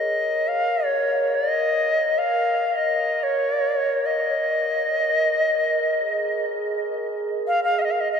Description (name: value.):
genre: world meditative, free-time meditation music.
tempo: free time.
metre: none.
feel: none.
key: Bb minor pentatonic.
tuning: A4 = 441 Hz.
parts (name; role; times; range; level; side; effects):
bright reedy Native American-style cedar flute; melody; 0.0-8.2 s; Db5 to F5; -20 LUFS; equal; none.
glass harmonica; texture; 0.0-8.2 s; Ab4 to Bb4; -28 LUFS; equal; none.
room: wet huge ambient reverb, RT60 8.8 s.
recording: in a vast, echoing space.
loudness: -20 LUFS.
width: side -7 dB against mid.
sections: 0.0-8.2 A section.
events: none.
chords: none.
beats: free time.